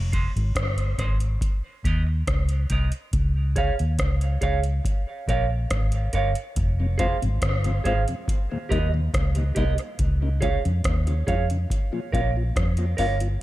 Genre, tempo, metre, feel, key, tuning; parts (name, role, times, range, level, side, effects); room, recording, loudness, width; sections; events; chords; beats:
dub reggae; 70 BPM; 4/4; straight; A4 = 440 Hz
vintage muted fingered electric bass; bass; 0.0-13.4 s; F1 to F2; -23 LUFS; equal
semi-hollow electric guitar; accompaniment; 0.1-13.2 s; F4 to F5; -30 LUFS; right 4 dB; high-pass filter, dub echo
booming analog drum machine; drums; 0.1-13.4 s; hi-hat, kick drum, rim click; -26 LUFS; equal
mellow tonewheel organ; accompaniment; 6.8-13.3 s; Eb2 to F4; -32 LUFS; left 3 dB; slow rotary speaker, high-pass filter, dub echo
little or no reverb; -21 LUFS; side -16 dB against mid
0.0-13.4 A section
break 0.0-6.6
0.0 Fm; 1.4 Eb; 3.1 Db; 4.8 Bbm; 6.6 Fm; 8.3 Eb; 10.0 Db; 11.7 Bbm
0.56 1.41 2.27 | 3.13 3.99 4.84 5.70 | 6.56 7.42 8.27 9.13 | 9.99 10.84 11.70 12.56